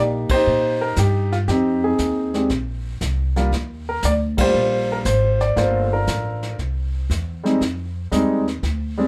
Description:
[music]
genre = jazz piano trio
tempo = 117 BPM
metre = 4/4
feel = swing 69% on 8ths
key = C minor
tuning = A4 = 442 Hz
[part]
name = clear grand piano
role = melody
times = 0.0-9.1 s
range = G3 to D5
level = -22 LUFS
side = equal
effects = none
[part]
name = upright bass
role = bass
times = 0.0-9.1 s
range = G1 to Bb2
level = -25 LUFS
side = equal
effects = none
[part]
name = vintage brush drum kit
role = drums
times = 0.3-9.1 s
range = brushed snare drum, hi-hat, kick drum, ride cymbal, snare drum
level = -31 LUFS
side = equal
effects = none
[sound]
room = moderate studio ambience, RT60 0.5 s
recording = none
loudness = -21 LUFS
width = mono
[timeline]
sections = 0.0-9.1 A section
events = band accent 0.2, 4.3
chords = 0.0 Cm7; 1.5 Fm7; 2.5 Bbsus2; 3.5 Ebmaj9; 5.6 Gm9; 6.6 C; 7.6 Fm9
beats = 0.45 0.96 | 1.47 1.99 2.50 3.01 | 3.52 4.03 4.54 5.05 | 5.56 6.07 6.58 7.09 | 7.61 8.12 8.63

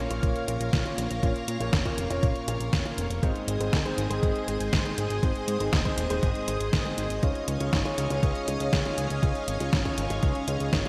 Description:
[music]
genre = italo disco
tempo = 120 BPM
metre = 4/4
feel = straight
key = unclear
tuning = A4 = 439 Hz
[part]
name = string machine, full ensemble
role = sustained chords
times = 0.0-10.9 s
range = Ab3 to Eb6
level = -35 LUFS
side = equal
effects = ensemble chorus
[part]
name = warm grand piano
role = stabs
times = 0.0-10.9 s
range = Ab2 to Db5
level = -34 LUFS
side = equal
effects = delay
[part]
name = fat analog bass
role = bass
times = 0.0-10.8 s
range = Eb1 to Bb2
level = -34 LUFS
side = equal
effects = none
[part]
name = detuned 8-bit digital drum machine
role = drums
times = 0.1-10.9 s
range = hi-hat, snare drum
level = -34 LUFS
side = equal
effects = overdrive, gated reverb
[part]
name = electronic kick drum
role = drums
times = 0.2-10.8 s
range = none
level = -30 LUFS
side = equal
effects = overdrive
[sound]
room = moderate lush hall reverb, RT60 2.3 s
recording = bright 1980s-style digital production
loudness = -27 LUFS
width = mono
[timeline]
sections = 0.0-10.9 A section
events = none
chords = 0.0 Bbm; 3.2 Ab; 7.2 Dbadd9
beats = 0.23 0.73 | 1.23 1.73 2.23 2.73 | 3.23 3.73 4.23 4.73 | 5.23 5.73 6.23 6.73 | 7.23 7.73 8.23 8.73 | 9.23 9.73 10.23 10.73

